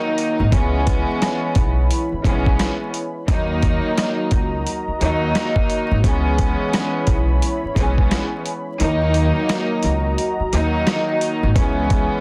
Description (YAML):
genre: hip hop, boom-bap hip-hop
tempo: 87 BPM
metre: 4/4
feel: swing 62% on 16ths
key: C# dorian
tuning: A4 = 442 Hz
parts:
  - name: warm studio string section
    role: accompaniment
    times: 0.0-12.2 s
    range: D#3 to D#4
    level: -24 LUFS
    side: equal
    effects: high-pass filter, low-pass filter
  - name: dusty soul sampler-style drum kit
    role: drums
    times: 0.2-12.1 s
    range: hi-hat, kick drum, rim click, snare drum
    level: -23 LUFS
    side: equal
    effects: none
  - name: upright bass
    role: bass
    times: 0.4-12.0 s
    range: G#1 to D#2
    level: -23 LUFS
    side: equal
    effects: none
  - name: dark analog pad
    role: sustained chords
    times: 0.5-12.2 s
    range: E4 to B5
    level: -30 LUFS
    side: equal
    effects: chorus, high-pass filter, low-pass filter
room: little or no reverb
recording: dense, heavily limited modern master, vinyl crackle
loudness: -19 LUFS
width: mono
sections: 0.5-12.2 A section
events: kick muted 8.8-11.6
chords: 0.0 D#m; 0.5 C#m7; 3.3 D#m; 6.0 C#m7; 8.8 D#m; 11.6 C#m7